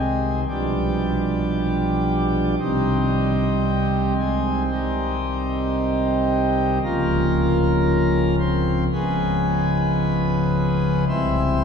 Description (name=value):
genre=classical, chorale-style piece for pipe organ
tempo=57 BPM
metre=4/4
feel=rubato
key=unclear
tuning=A4 = 441 Hz
part: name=pipe organ, principal chorus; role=solo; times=0.0-11.6 s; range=C1 to E5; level=-19 LUFS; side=equal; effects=none
room=wet cathedral reverb, RT60 6.0 s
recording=heard from further back in the room, studio ambience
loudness=-19 LUFS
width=side -6 dB against mid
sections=0.0-11.6 A section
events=none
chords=0.5 G7/B; 2.6 Cm; 6.8 Bbm/Db; 8.9 Db7; 11.1 C